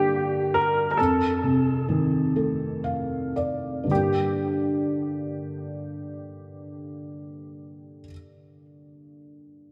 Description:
six-eight pop ballad; 36-49 BPM (dotted quarters); 6/8; straight; G minor; A4 = 439 Hz
clear baby grand piano; melody; 0.0-8.1 s; G4 to Bb4; -28 LUFS; equal; analog chorus, analog delay
felt-muted upright piano; accompaniment; 0.0-9.7 s; F2 to F5; -29 LUFS; equal; analog chorus
wet plate reverb, RT60 2.3 s; dreamy mix soaked in reverb; -25 LUFS; mono
0.0-3.9 A section; 3.9-7.2 B section
slowing down 0.0-3.9; felt piano fill 2.4-3.9
0.0 Gm; 1.0 F7; 3.9 Gm

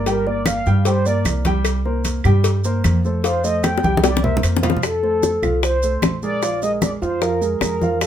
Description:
Afro-Cuban jazz; 151 BPM; 4/4; straight; F major; A4 = 438 Hz
dark baby grand piano; accompaniment; 0.0-8.1 s; F3 to G5; -23 LUFS; right 1 dB
upright bass; bass; 0.0-8.1 s; G1 to G2; -21 LUFS; right 1 dB
mellow horn-like synth lead; melody; 0.1-8.1 s; A4 to G5; -22 LUFS; equal; chorus
congas; percussion; 0.1-8.1 s; -24 LUFS; equal
cowbell and bongos; percussion; 0.1-8.1 s; -22 LUFS; left 7 dB
maracas; percussion; 0.1-8.1 s; -32 LUFS; right 5 dB
claves; percussion; 0.5-8.1 s; -30 LUFS; right 7 dB
light reverb; minimal, uncompressed stereo recording; -16 LUFS; side -10 dB against mid
0.0-4.8 A section; 4.8-8.1 B section
soft synth lead solo 0.0-4.8; drum fill 3.6-4.8
0.0 Gm7; 1.7 C5; 3.2 Fadd9; 4.0 C5; 4.8 F; 6.4 Bb5

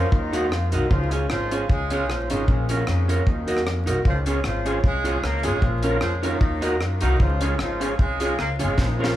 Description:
ska; 152 BPM; 4/4; swing 54% on 8ths; A4 = 439 Hz
dark horn section; melody; 0.0-9.2 s; Db3 to Bb4; -27 LUFS; left 1 dB; analog delay
vintage hollow-body jazz guitar; accompaniment; 0.0-9.1 s; Db4 to Eb5; -27 LUFS; right 2 dB
upright bass; bass; 0.0-9.1 s; Ab1 to Gb2; -25 LUFS; equal
deep reggae drum kit; drums; 0.1-9.1 s; hi-hat, kick drum, rim click, snare drum; -24 LUFS; equal
bright tonewheel organ; stabs; 4.3-9.1 s; Db4 to Bb4; -32 LUFS; left 2 dB; fast rotary speaker
moderate large studio reverb, RT60 0.8 s; band playing live in one room, vinyl crackle; -20 LUFS; side -13 dB against mid
0.0-9.2 A section
drum fill 8.8-9.2
0.1 Ebm; 0.9 Db; 2.5 Bbm; 3.3 Ebm; 4.1 Db; 5.6 Bbm; 6.4 Ebm; 7.2 Db

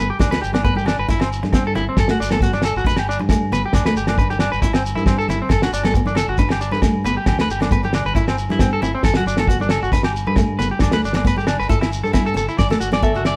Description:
highlife guitar band; 136 BPM; 4/4; swing 54% on 16ths; G major; A4 = 440 Hz
nylon-string guitar; accompaniment; 0.0-13.1 s; F#3 to E4; -28 LUFS; equal
clean electric guitar; arpeggios; 0.0-13.3 s; C4 to D5; -25 LUFS; equal
modern bright fingered electric bass; bass; 0.0-13.3 s; G1 to G2; -27 LUFS; equal
shekere; percussion; 0.0-13.4 s; -30 LUFS; equal
cloth-damped thuddy drum kit; drums; 0.2-13.4 s; kick drum, snare drum; -22 LUFS; equal
agogo bells; percussion; 0.2-13.4 s; -31 LUFS; equal
congas; percussion; 0.2-13.4 s; -30 LUFS; equal
semi-hollow electric guitar; melody; 13.0-13.4 s; A4 to E5; -26 LUFS; equal
moderate stone room reverb, RT60 1.1 s; band playing live in one room; -18 LUFS; mono
0.0-13.4 A section
0.0 G; 1.1 Am/G (rootless); 2.0 D/G; 2.9 G; 4.6 Am/G (rootless); 5.5 D/G; 6.4 G; 8.2 Am/G (rootless); 9.0 D/G; 9.9 G; 11.7 Am/G; 12.6 D/G

